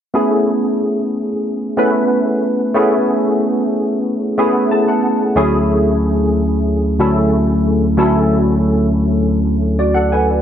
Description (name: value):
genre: soul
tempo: 92 BPM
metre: 4/4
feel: swing 54% on 16ths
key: A major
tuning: A4 = 440 Hz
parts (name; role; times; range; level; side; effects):
- barky tine electric piano; solo; 0.1-10.4 s; D2 to A5; -13 LUFS; equal; ensemble chorus
room: light reverb, digital ambience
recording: none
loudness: -13 LUFS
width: side -9 dB against mid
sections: 0.1-10.4 A section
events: tine electric piano fill 4.4-5.4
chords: 0.1 Amaj9; 5.4 Dmaj9#11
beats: | 0.14 0.79 1.45 2.10 | 2.75 3.40 4.06 4.71 | 5.37 6.02 6.67 7.33 | 7.98 8.63 9.29 9.94